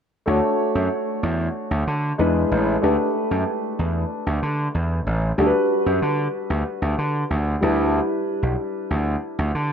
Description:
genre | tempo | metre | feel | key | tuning
polished 1980s jazz-funk pop | 94 BPM | 4/4 | straight | D major | A4 = 439 Hz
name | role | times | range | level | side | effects
dark grand piano | accompaniment | 0.3-9.7 s | G3 to C#5 | -22 LUFS | left 1 dB | wide subtle chorus
gritty slap bass | bass | 0.3-9.7 s | A1 to D3 | -22 LUFS | equal | overdrive
room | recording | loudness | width
moderate cathedral reverb, RT60 4.4 s | dreamy mix soaked in reverb | -20 LUFS | side -7 dB against mid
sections
0.3-9.7 A section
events
none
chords
0.3 Dmaj7; 2.2 E7; 2.8 A9sus4/D; 5.4 Gmaj7/D; 7.6 Em7

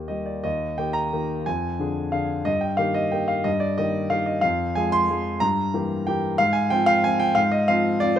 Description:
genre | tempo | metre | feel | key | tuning
classical, piano waltz | 182 BPM | 3/4 | uneven beats, rubato | Eb major | A4 = 440 Hz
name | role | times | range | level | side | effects
warm concert grand piano | solo | 0.0-8.2 s | Eb2 to C6 | -20 LUFS | equal | none
room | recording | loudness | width
light reverb | none | -20 LUFS | side -10 dB against mid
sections
0.5-8.2 A section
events
none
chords
0.5 Eb; 1.5 Ddim/F; 2.5 Eb/G; 4.4 Fm; 5.4 Edim/G; 6.4 Fm/Ab

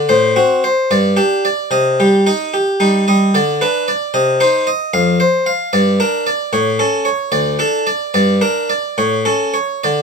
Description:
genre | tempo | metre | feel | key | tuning
classical, baroque-style suite movement for harpsichord | 74 BPM (dotted quarters) | 6/8 | rubato | unclear | A4 = 440 Hz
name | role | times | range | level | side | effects
harpsichord | solo | 0.0-10.0 s | D2 to F5 | -12 LUFS | equal | none
room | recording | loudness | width
light reverb | close, detailed microphones | -12 LUFS | side -5 dB against mid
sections
0.0-10.0 A section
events
none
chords
0.1 F#dim/A; 0.9 G5; 1.7 Cm; 3.3 Bm/D; 4.1 Cm; 4.9 F5; 5.7 Gm; 6.5 A; 7.3 D5; 8.1 Gm; 9.0 A

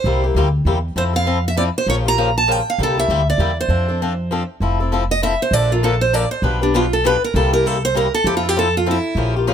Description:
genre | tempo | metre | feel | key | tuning
acoustic string swing (jazz manouche) | 198 BPM | 3/4 | swing 60% on 8ths | F major | A4 = 440 Hz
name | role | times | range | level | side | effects
picked steel-string acoustic guitar | melody | 0.0-9.3 s | D4 to Bb5 | -18 LUFS | right 2 dB | none
upright bass | bass | 0.0-9.5 s | F1 to F2 | -20 LUFS | equal | none
picked swing-style acoustic guitar | accompaniment | 0.1-9.5 s | B2 to B4 | -21 LUFS | left 5 dB | none
room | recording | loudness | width
little or no reverb | close, detailed microphones | -15 LUFS | side -8 dB against mid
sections
0.0-4.6 A section; 4.6-9.5 B section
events
steel-string acoustic guitar solo 4.6-9.5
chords
0.1 C7; 1.0 Fmaj7; 1.9 Bbm6; 2.8 C9; 3.7 F6; 4.6 Fmaj7; 5.5 Bbmaj7; 6.4 G7/B; 7.3 C7; 8.2 Fmaj7

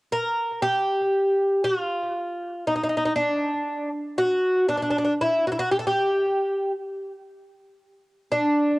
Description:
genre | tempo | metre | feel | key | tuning
fado | 59 BPM | 2/4 | rubato | unclear | A4 = 440 Hz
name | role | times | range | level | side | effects
Irish bouzouki | solo | 0.1-8.8 s | D4 to Bb4 | -21 LUFS | equal | cassette tape
room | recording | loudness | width
moderate studio reverb, RT60 0.6 s | home recording on cassette | -21 LUFS | side -21 dB against mid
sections
0.1-8.8 A section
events
none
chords
none

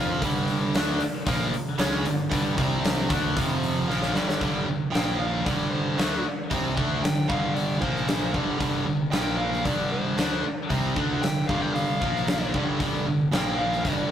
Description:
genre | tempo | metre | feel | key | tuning
hard rock | 114 BPM | 4/4 | straight | G minor | A4 = 441 Hz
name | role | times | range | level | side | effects
cranked stack guitar | riff | 0.0-14.1 s | F2 to F4 | -28 LUFS | right 4 dB | overdrive
high-gain distorted guitar | riff | 0.0-14.1 s | F2 to F4 | -30 LUFS | left 4 dB | distortion
picked electric bass | bass | 0.0-14.1 s | F1 to F2 | -33 LUFS | left 1 dB | none
huge arena drum kit | drums | 0.2-14.0 s | hi-hat, kick drum, snare drum | -27 LUFS | equal | none
dark smooth lead guitar | melody | 4.9-14.1 s | C5 to G5 | -31 LUFS | equal | overdrive
room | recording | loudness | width
light reverb | rough rehearsal-room recording, tube saturation | -23 LUFS | side -10 dB against mid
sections
0.0-4.4 A section; 4.4-14.1 B section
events
drum fill 3.9-4.4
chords
0.0 Gm; 2.6 C5; 3.1 D5; 3.4 F5; 3.9 Gm; 4.4 G5; 4.9 Bb5; 5.5 G5; 7.8 Bb5; 8.3 G5; 9.1 Bb5; 9.7 G5; 12.0 Bb5; 12.5 G5; 13.3 Bb5

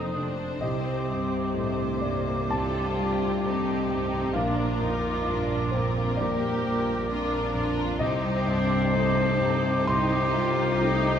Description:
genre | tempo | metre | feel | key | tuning
cinematic | 65 BPM | 4/4 | rubato | C dorian | A4 = 440 Hz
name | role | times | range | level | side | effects
warm symphonic violin section | melody | 0.0-11.2 s | G4 to C5 | -37 LUFS | left 4 dB | none
clear clarinet | second line | 0.0-11.2 s | G4 to C5 | -31 LUFS | equal | none
rich symphonic violin section | second line | 0.0-11.2 s | C4 to G4 | -35 LUFS | left 3 dB | none
small flute group | second line | 0.0-11.2 s | D6 to Eb6 | -34 LUFS | equal | none
dark baby grand piano | accompaniment | 0.0-11.2 s | Bb1 to C6 | -30 LUFS | left 2 dB | none
warm symphonic viola section | accompaniment | 0.0-11.2 s | A3 to F4 | -33 LUFS | right 2 dB | none
concert harp | arpeggios | 0.0-11.2 s | Bb2 to D6 | -34 LUFS | left 7 dB | none
warm studio cello section | bass | 0.0-11.2 s | F2 to C3 | -33 LUFS | right 4 dB | none
warm studio double bass section | bass | 0.0-11.2 s | F1 to C2 | -33 LUFS | right 4 dB | none
room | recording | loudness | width
moderate scoring stage reverb, RT60 1.8 s | none | -23 LUFS | side -8 dB against mid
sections
0.0-11.2 A section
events
none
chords
0.0 F7; 0.6 Cmadd9; 4.3 Bb; 8.0 Cmadd9

